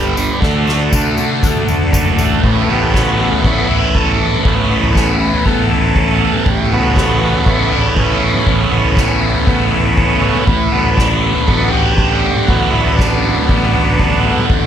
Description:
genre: psychedelic rock.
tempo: 119 BPM.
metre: 4/4.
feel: straight.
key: A mixolydian.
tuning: A4 = 440 Hz.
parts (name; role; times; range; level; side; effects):
overdriven combo organ; sustained chords; 0.0-14.5 s; C#3 to C#5; -20 LUFS; right 3 dB; none.
thick fuzz guitar; riff; 0.0-14.7 s; G2 to F#4; -15 LUFS; equal; distortion, phaser.
fuzz fingered electric bass; bass; 0.0-14.7 s; F#1 to D2; -19 LUFS; equal; overdrive.
tambourine; percussion; 0.2-2.3 s; none; -28 LUFS; left 7 dB; none.
soft-mallet drum kit; drums; 0.4-14.6 s; crash cymbal, kick drum, snare drum, toms; -17 LUFS; equal; none.
room: light reverb, small room ambience.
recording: none.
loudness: -11 LUFS.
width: side -9 dB against mid.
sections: 0.0-2.4 A section; 2.4-14.7 B section.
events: drum fill 0.4-2.4; transistor combo organ solo 2.4-14.7.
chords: 0.4 D; 2.4 Aadd9; 10.5 Bm/A.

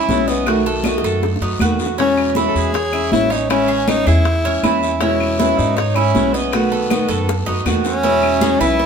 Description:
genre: latin, Cuban son and guajira.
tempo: 158 BPM.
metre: 4/4.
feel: straight.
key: E major.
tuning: A4 = 438 Hz.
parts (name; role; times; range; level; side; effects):
breathy tenor saxophone; melody; 0.0-8.9 s; A3 to A4; -20 LUFS; equal; none.
flamenco guitar; accompaniment; 0.0-8.8 s; B2 to F#4; -20 LUFS; left 2 dB; none.
Cuban tres; arpeggios; 0.0-8.9 s; C#4 to D#5; -22 LUFS; right 6 dB; none.
upright bass; bass; 0.0-8.9 s; A1 to G#2; -22 LUFS; equal; none.
bongos and cowbell; percussion; 0.1-8.9 s; none; -28 LUFS; left 4 dB; none.
congas; percussion; 0.1-8.9 s; none; -24 LUFS; right 1 dB; none.
guiro; percussion; 0.1-8.9 s; none; -32 LUFS; left 4 dB; none.
claves; percussion; 0.5-8.4 s; none; -32 LUFS; left 7 dB; none.
room: wet stone room reverb, RT60 1.1 s.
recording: band playing live in one room.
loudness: -14 LUFS.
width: side -6 dB against mid.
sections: 0.0-8.0 A section.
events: drum fill 0.8-2.0, 7.3-8.0.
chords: 0.5 B7; 2.0 E6; 3.5 Amaj7; 5.0 E6; 6.5 B7; 8.0 E6.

